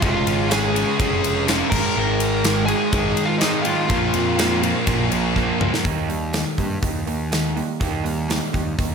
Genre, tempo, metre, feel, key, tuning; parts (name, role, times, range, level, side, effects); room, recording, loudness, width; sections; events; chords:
quiet-loud alternative rock; 123 BPM; 4/4; straight; A4 = 440 Hz
fuzz lead guitar; melody; 0.0-4.6 s; Eb4 to Bb5; -24 LUFS; left 2 dB; distortion, slapback echo
crunchy overdriven guitar; riff; 0.0-8.9 s; Ab2 to Eb4; -25 LUFS; right 15 dB; spring reverb
sludgy distorted guitar; riff; 0.0-5.8 s; Ab2 to Db4; -25 LUFS; left 13 dB; overdrive
thick fuzz guitar; riff; 0.0-5.8 s; Ab2 to Db4; -27 LUFS; right 1 dB; distortion
fuzz picked electric bass; bass; 0.0-8.9 s; F1 to G2; -26 LUFS; equal; overdrive
big rock drum kit; drums; 0.0-8.9 s; crash cymbal, hi-hat, kick drum, ride cymbal, snare drum, toms; -23 LUFS; equal
picked steel-string acoustic guitar; arpeggios; 5.8-8.9 s; Eb3 to Eb4; -30 LUFS; left 7 dB
small room ambience; -18 LUFS; side -6 dB against mid
0.0-5.8 A section; 5.8-8.9 B section
drum fill 5.4-5.8
0.0 Db/F; 1.7 Ab5; 3.9 Bb5; 5.8 Eb